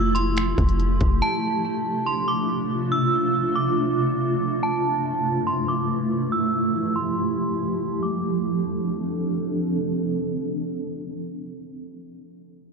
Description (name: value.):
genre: hip hop, atmospheric cloud-rap.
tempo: 141 BPM.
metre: 4/4.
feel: half-time.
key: D minor.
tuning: A4 = 440 Hz.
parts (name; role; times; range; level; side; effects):
metallic FM bell; melody; 0.0-9.3 s; A5 to E6; -26 LUFS; right 2 dB; chorus, tape echo.
granular cloud pad; sustained chords; 0.0-11.5 s; G2 to A4; -24 LUFS; right 1 dB; built-in reverb, sidechain pumping.
clean 808-style bass; bass; 0.0-1.2 s; F1; -22 LUFS; equal; none.
trap drum kit; drums; 0.2-1.1 s; finger snaps, hi-hat, kick drum; -23 LUFS; equal; none.
room: moderate lush hall reverb, RT60 1.7 s.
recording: low-pass filter.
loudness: -21 LUFS.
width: side -4 dB against mid.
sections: 0.0-8.0 A section; 8.0-11.4 B section.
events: filter sweep 0.0-8.0.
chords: 0.0 Fmaj9; 1.2 Dm7; 4.6 G13sus4; 6.3 Fmaj9; 8.0 Dm7.